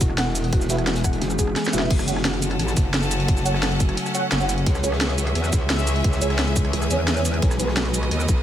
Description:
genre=dark technical drum and bass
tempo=174 BPM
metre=4/4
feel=straight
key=F# dorian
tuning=A4 = 440 Hz
part: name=metallic inharmonic drone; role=sustained chords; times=0.0-8.4 s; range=C#3 to G#4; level=-29 LUFS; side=left 1 dB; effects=chorus, built-in reverb, phaser, sidechain pumping
part: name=soft round pluck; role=arpeggios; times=0.0-1.8 s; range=F#4 to F#5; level=-31 LUFS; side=left 2 dB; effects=analog chorus, sidechain pumping, ping-pong delay
part: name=metallic wobble bass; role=bass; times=0.0-8.4 s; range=E1 to C#2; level=-23 LUFS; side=equal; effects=distortion, chorus, tube saturation
part: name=crunchy breakbeat drum kit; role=drums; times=0.0-8.4 s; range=hi-hat, snare drum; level=-38 LUFS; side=equal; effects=none
part: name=drum and bass drum kit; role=drums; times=0.0-8.4 s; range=cabasa, crash cymbal, hi-hat, rim click, snare drum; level=-26 LUFS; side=right 1 dB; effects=none
part: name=electronic kick drum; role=drums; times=0.0-8.4 s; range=none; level=-21 LUFS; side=equal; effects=none
part: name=dark brass ensemble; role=stabs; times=0.7-7.6 s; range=B3 to F#5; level=-29 LUFS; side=right 3 dB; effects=ping-pong delay
part: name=metallic wobble bass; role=bass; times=1.2-2.8, 4.8-8.3 s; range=E1 to E2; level=-23 LUFS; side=equal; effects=chorus, tube saturation
part: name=bright studio string section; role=texture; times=1.9-8.4 s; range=B3 to B5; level=-29 LUFS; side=left 1 dB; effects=sidechain pumping
room=studio reverb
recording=none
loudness=-19 LUFS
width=side -11 dB against mid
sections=0.0-1.9 A section; 1.9-8.4 A section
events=drop 0.0-1.9, 1.9-8.4; drum fill 1.6-1.9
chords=0.0 E; 1.9 F#m; 4.7 C#m; 7.4 B

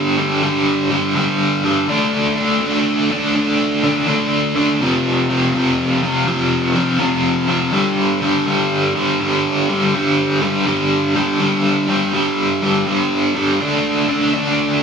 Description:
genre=rock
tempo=82 BPM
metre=4/4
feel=swing 66% on 8ths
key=unclear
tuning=A4 = 438 Hz
part: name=biting overdriven guitar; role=solo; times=0.0-14.8 s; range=F2 to D4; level=-14 LUFS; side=equal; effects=tremolo
room=moderate large studio reverb, RT60 1.1 s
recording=band playing live in one room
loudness=-14 LUFS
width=side -6 dB against mid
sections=0.0-14.8 A section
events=none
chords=0.0 G5; 1.9 D5; 4.8 F5; 7.7 G5; 13.6 D5

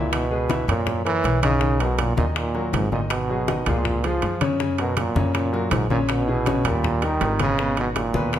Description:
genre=latin, salsa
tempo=161 BPM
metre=4/4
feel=straight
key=unclear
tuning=A4 = 438 Hz
part: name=brilliant trombone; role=melody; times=0.0-8.4 s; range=Ab2 to F3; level=-24 LUFS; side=right 4 dB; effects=slapback echo
part: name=bright upright piano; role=accompaniment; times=0.0-8.4 s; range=Cb3 to Fb5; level=-27 LUFS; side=left 4 dB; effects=none
part: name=upright bass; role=bass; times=0.0-8.4 s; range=Ab1 to Gb2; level=-26 LUFS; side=equal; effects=none
part: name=bongos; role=percussion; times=0.1-8.4 s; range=none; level=-33 LUFS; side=left 7 dB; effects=none
part: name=congas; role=percussion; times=0.1-8.4 s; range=none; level=-29 LUFS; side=left 3 dB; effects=none
part: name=timbales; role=percussion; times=0.1-8.4 s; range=none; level=-30 LUFS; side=right 6 dB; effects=none
room=moderate large studio reverb, RT60 1.0 s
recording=none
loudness=-20 LUFS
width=side -11 dB against mid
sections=0.0-8.4 A section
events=none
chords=0.1 Dbm7; 0.9 Gb7; 1.6 Bmaj7; 3.1 Abm7; 3.9 Db; 4.6 Gb; 6.1 Bbm7b5; 6.8 Eb; 7.6 Abm7

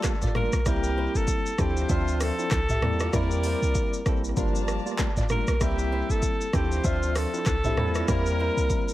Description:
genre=afrobeats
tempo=97 BPM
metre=4/4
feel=swing 58% on 16ths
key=C mixolydian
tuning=A4 = 442 Hz
part: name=clear horn section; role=second line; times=0.0-8.9 s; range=F3 to A5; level=-37 LUFS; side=left 1 dB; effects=none
part: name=tine electric piano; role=accompaniment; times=0.0-8.9 s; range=F3 to E5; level=-31 LUFS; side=left 1 dB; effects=medium stereo tremolo, analog delay
part: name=afro-pop drum kit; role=drums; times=0.0-8.9 s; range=handclaps, hi-hat, kick drum, rim click, shaker, toms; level=-28 LUFS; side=equal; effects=overdrive
part: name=flamenco guitar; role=riff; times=0.2-8.5 s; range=C4 to E5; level=-37 LUFS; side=right 2 dB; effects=analog delay
part: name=clean 808-style bass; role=bass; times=0.2-8.7 s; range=G1 to E2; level=-27 LUFS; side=equal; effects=none
part: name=breathy alto saxophone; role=melody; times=0.4-8.9 s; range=F4 to Bb4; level=-30 LUFS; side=equal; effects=analog delay
room=digital ambience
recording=echo-heavy mix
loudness=-23 LUFS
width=side -15 dB against mid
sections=0.0-8.9 A section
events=none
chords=0.0 Gm9; 0.7 C7; 1.6 Dm9; 2.8 C7/E; 4.4 Gm9; 5.6 C7; 6.5 Dm9; 7.8 C7/E

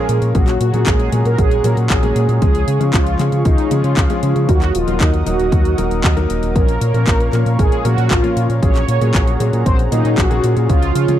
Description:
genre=italo disco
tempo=116 BPM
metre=4/4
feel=straight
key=unclear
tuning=A4 = 440 Hz
part: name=mellow synth brass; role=melody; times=0.0-11.2 s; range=Eb4 to Db5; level=-20 LUFS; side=right 2 dB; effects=chorus, tape echo
part: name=warm analog pad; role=sustained chords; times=0.0-11.2 s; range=Ab4 to Eb6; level=-27 LUFS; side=right 3 dB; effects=chorus
part: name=clear grand piano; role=stabs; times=0.0-11.2 s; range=Bb2 to Bb4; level=-22 LUFS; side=left 4 dB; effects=none
part: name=round analog bass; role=bass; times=0.1-11.2 s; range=Eb1 to Db3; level=-17 LUFS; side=equal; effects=none
part: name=house drum kit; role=drums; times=0.1-11.2 s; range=handclaps, hi-hat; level=-24 LUFS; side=left 1 dB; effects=overdrive
part: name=electronic kick drum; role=drums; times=0.3-10.8 s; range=none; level=-16 LUFS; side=equal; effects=overdrive
room=digital ambience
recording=dry, close 1970s-style studio recording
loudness=-13 LUFS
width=side -11 dB against mid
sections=0.0-11.2 A section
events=none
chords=0.3 Gbadd9/Bb; 2.4 Db; 4.5 Ebm; 6.6 Bbm; 8.6 Gbadd9/Bb; 10.7 Db

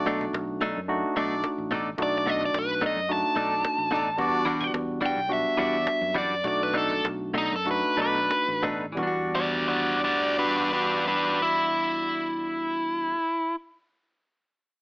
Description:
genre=straight-eighth soul blues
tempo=87-109 BPM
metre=4/4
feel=swing 54% on 16ths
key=E minor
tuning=A4 = 439 Hz
part: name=barky tine electric piano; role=accompaniment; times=0.0-13.2 s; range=G3 to F#4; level=-31 LUFS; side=equal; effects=none
part: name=brilliant horn section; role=sustained chords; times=0.0-12.5 s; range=D#4 to D5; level=-32 LUFS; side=equal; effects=none
part: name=fingered electric bass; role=bass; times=0.0-13.1 s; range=A1 to F#2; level=-38 LUFS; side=equal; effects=none
part: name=direct-recorded clean electric guitar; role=stabs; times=0.1-13.3 s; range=B2 to F#4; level=-30 LUFS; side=equal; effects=none
part: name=cajon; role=drums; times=0.1-9.1 s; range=none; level=-35 LUFS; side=equal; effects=none
part: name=overdriven electric guitar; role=melody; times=2.0-13.6 s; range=D4 to A5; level=-25 LUFS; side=equal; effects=none
room=moderate studio reverb, RT60 0.7 s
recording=AM radio sound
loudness=-23 LUFS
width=side -36 dB against mid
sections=0.0-9.0 A section; 9.0-11.7 B section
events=slowing down 4.2-9.0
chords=0.0 B7#9; 4.2 Em9; 6.4 B7#9; 9.0 Em9

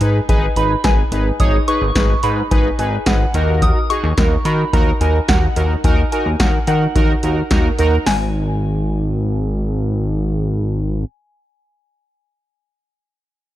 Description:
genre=synth-pop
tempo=108 BPM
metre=4/4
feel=straight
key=unclear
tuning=A4 = 440 Hz
part: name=soft synth bell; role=melody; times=0.0-11.7 s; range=F#5 to D#6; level=-23 LUFS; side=equal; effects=chorus, phaser, tape echo
part: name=analog synth brass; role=accompaniment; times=0.0-8.0 s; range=D#4 to C#5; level=-20 LUFS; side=right 1 dB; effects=chorus
part: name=chorused synth bass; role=bass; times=0.0-11.0 s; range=G#1 to D#3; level=-18 LUFS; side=equal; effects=none
part: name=electro analog drum machine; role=drums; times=0.0-8.2 s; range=hi-hat, kick drum, snare drum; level=-18 LUFS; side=equal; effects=none
room=light reverb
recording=dark, warm production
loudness=-14 LUFS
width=side -14 dB against mid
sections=0.0-8.1 A section; 8.1-10.3 B section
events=none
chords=0.0 G#m; 3.3 D#m; 8.1 N.C.

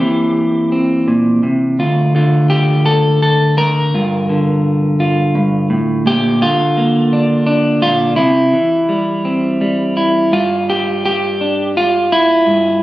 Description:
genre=folk, solo fingerstyle acoustic guitar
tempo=84 BPM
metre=3/4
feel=straight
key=unclear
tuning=A4 = 442 Hz
part: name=clean electric guitar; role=solo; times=0.0-12.8 s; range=D2 to Bb4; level=-12 LUFS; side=equal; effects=none
room=light reverb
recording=recorded on a phone in the room, studio reverb, compression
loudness=-12 LUFS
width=side -16 dB against mid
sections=0.0-10.3 A section; 10.3-12.8 B section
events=none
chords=0.0 C7; 1.8 N.C.; 3.9 Gm7; 6.1 Bb; 8.2 C; 10.3 G5

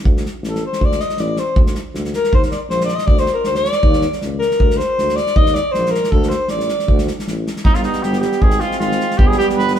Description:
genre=balkan folk, Balkan brass band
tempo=158 BPM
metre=2/4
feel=swing 54% on 16ths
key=unclear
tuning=A4 = 441 Hz
part: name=mellow tuba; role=bass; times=0.0-9.8 s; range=G1 to Eb2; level=-23 LUFS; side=equal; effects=none
part: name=natural country drum kit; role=percussion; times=0.1-9.8 s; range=kick drum, snare drum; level=-18 LUFS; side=equal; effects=none
part: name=clear alto saxophone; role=second line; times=0.5-7.0 s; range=A4 to Eb5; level=-18 LUFS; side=left 2 dB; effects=none
part: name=clear trumpet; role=melody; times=7.6-9.8 s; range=Eb4 to B4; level=-19 LUFS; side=right 2 dB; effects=none
part: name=clear euphonium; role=accompaniment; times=7.6-9.8 s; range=G3 to Ab3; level=-22 LUFS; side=right 6 dB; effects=none
part: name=clear French horn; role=accompaniment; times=7.7-9.8 s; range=B3 to C4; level=-24 LUFS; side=left 2 dB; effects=none
room=moderate stone room reverb, RT60 1.4 s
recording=band playing live in one room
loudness=-14 LUFS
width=side -10 dB against mid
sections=0.0-7.7 A section; 7.7-9.8 B section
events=alto saxophone solo 0.0-7.7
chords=0.1 D5; 1.6 Bb/D; 2.3 Eb5; 3.1 Bbadd9/D (rootless); 3.8 Bbmadd11; 4.6 Bbadd9/D; 5.4 Eb5; 6.1 D5; 7.7 G; 8.4 Ab; 9.2 G

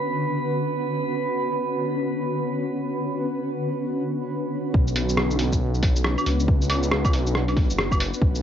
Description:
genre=future garage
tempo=138 BPM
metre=4/4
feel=swing 61% on 16ths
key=B minor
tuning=A4 = 440 Hz
part: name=granular cloud pad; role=sustained chords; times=0.0-8.4 s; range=D3 to B4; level=-26 LUFS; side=equal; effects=built-in reverb, sidechain pumping
part: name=drifting glass-harmonics texture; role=texture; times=0.0-4.7 s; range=B4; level=-30 LUFS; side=right 4 dB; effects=chorus, built-in reverb
part: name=swelling detuned saw bass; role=bass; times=4.7-8.4 s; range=F#1 to C#2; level=-24 LUFS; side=equal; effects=sidechain pumping
part: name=electronic kick drum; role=drums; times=4.7-8.3 s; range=none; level=-21 LUFS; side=equal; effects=overdrive, cassette tape
part: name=lo-fi sampler-style drum kit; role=drums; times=4.9-8.4 s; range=claves, hi-hat, rim click, shaker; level=-26 LUFS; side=equal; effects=cassette tape
room=wet booth ambience, RT60 0.2 s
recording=home recording on cassette, nothing above 7.7 kHz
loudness=-21 LUFS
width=side -9 dB against mid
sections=0.0-4.7 A section; 4.7-8.4 B section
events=none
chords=0.0 Bmadd9

